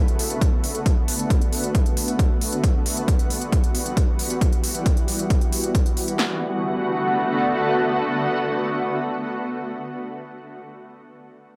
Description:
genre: uplifting trance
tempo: 135 BPM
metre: 4/4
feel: straight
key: B minor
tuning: A4 = 440 Hz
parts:
  - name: shimmering ambient pad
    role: sustained chords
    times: 0.0-9.8 s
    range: D3 to F#4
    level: -26 LUFS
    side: equal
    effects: chorus, built-in reverb, sidechain pumping
  - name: electronic hi-hat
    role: drums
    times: 0.1-6.2 s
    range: none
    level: -31 LUFS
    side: equal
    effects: overdrive
  - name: big-room dance drum kit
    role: drums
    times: 0.4-6.3 s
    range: handclaps, kick drum, snare drum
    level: -22 LUFS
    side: equal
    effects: overdrive
room: moderate lush hall reverb, RT60 2.2 s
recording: none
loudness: -22 LUFS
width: mono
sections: 0.0-6.2 A section; 6.2-9.7 B section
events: none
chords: 0.0 Bm7; 2.6 Emadd9; 6.2 Bm7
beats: 0.41 | 0.86 1.30 1.75 2.19 | 2.64 3.08 3.52 3.97 | 4.41 4.86 5.30 5.75 | 6.19 6.64 7.08 7.53 | 7.97 8.41 8.86 9.30

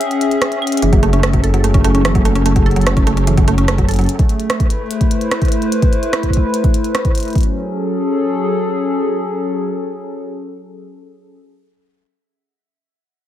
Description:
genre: IDM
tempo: 147 BPM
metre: 4/4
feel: straight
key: unclear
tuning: A4 = 440 Hz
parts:
  - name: hollow soft pad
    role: sustained chords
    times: 0.0-11.4 s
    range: F#3 to G5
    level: -18 LUFS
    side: left 1 dB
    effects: chorus, sidechain pumping
  - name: glitchy drum kit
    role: drums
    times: 0.0-7.5 s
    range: claves, hi-hat, rim click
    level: -22 LUFS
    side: right 1 dB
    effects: dub echo
  - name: mallet-like synth pluck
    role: arpeggios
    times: 0.8-4.1 s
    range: E3 to A4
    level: -20 LUFS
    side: right 4 dB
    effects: chorus, dub echo
  - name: dark detuned saw bass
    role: bass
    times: 0.8-4.1 s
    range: F#1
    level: -15 LUFS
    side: equal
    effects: none
  - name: electronic kick drum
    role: drums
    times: 0.9-7.4 s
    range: none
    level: -15 LUFS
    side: equal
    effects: none
room: light reverb, digital ambience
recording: echo-heavy mix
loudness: -13 LUFS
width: side -12 dB against mid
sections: 0.8-7.4 A section; 7.4-10.6 B section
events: break 0.0-0.8; drum fill 0.6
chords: 0.0 C#m; 0.8 F#m7; 4.1 Am; 7.4 F#m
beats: 0.01 0.42 | 0.82 1.23 1.64 2.05 | 2.46 2.87 3.27 3.68 | 4.09 4.50 4.91 5.31 | 5.72 6.13 6.54 6.95 | 7.36 7.76 8.17 8.58 | 8.99 9.39 9.80 10.21

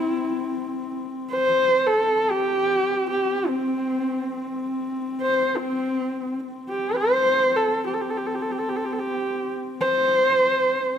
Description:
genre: mongolian traditional, Mongolian folk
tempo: free time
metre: none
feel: none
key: C gong mode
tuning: A4 = 440 Hz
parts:
  - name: warm horsehead fiddle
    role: melody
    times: 0.0-11.0 s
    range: C4 to C5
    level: -21 LUFS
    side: equal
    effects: none
  - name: dark horsehead fiddle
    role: drone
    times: 0.0-11.0 s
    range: C4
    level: -31 LUFS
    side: left 3 dB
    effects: none
room: moderate recital hall reverb, RT60 1.5 s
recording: none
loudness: -21 LUFS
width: side -8 dB against mid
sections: 0.0-6.5 A section; 6.5-11.0 A section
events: none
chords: none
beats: free time

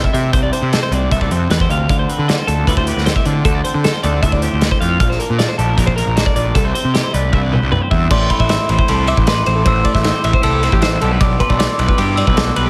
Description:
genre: math rock and midwest emo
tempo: 154 BPM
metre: 4/4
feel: straight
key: unclear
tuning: A4 = 438 Hz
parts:
  - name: twangy electric guitar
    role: accompaniment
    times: 0.0-12.7 s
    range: G2 to C5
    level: -26 LUFS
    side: equal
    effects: spring reverb
  - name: twelve-string electric guitar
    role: arpeggios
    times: 0.0-12.7 s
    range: G4 to F5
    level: -23 LUFS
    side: equal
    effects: none
  - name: loose indie drum kit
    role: drums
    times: 0.0-12.7 s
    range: crash cymbal, hi-hat, kick drum, ride cymbal, snare drum, toms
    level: -20 LUFS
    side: equal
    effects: none
  - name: fuzz picked electric bass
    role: bass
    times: 0.1-12.7 s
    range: A1 to D3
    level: -20 LUFS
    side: equal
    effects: overdrive
  - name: glockenspiel with soft plastic mallets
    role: melody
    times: 8.1-12.7 s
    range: B5 to E6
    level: -23 LUFS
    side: equal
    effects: slapback echo
room: light reverb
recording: heavily compressed radio sound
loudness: -15 LUFS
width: mono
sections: 0.0-8.1 A section; 8.1-12.7 B section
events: drum fill 7.3-8.1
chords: 0.0 Fmaj7/C; 1.9 Dm7; 5.0 Bb; 6.6 C; 8.1 Am7; 11.0 Em7/B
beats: | 0.34 0.73 1.12 1.50 | 1.90 2.28 2.67 3.06 | 3.45 3.84 4.23 4.62 | 5.01 5.39 5.78 6.17 | 6.56 6.95 7.34 7.72 | 8.11 8.50 8.89 9.28 | 9.66 10.05 10.44 10.82 | 11.21 11.60 11.98 12.37

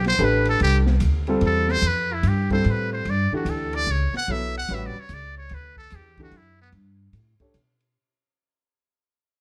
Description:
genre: modal jazz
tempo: 147 BPM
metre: 3/4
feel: swing 65% on 8ths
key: unclear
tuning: A4 = 440 Hz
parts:
  - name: trumpet with metal mute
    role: melody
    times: 0.0-6.7 s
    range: B3 to F#5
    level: -28 LUFS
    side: equal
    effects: none
  - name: upright bass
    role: bass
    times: 0.0-7.9 s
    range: A1 to B2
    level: -25 LUFS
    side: equal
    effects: none
  - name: open jazz drum kit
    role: drums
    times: 0.0-7.9 s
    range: hi-hat, kick drum, ride cymbal, snare drum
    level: -38 LUFS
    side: equal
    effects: none
  - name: warm baby grand piano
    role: accompaniment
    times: 0.2-7.5 s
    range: E3 to Db5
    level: -28 LUFS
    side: equal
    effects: none
room: light reverb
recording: dark, warm production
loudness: -22 LUFS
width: mono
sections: 0.0-8.0 A section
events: fade-out 0.0-8.0; muted trumpet solo 0.0-8.0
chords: 0.0 Fmaj9; 3.1 Gmaj9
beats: 0.19 | 0.60 1.01 1.42 | 1.83 2.23 2.64 | 3.05 3.46 3.87 | 4.28 4.69 5.10 | 5.51 5.91 6.32 | 6.73 7.14 7.55

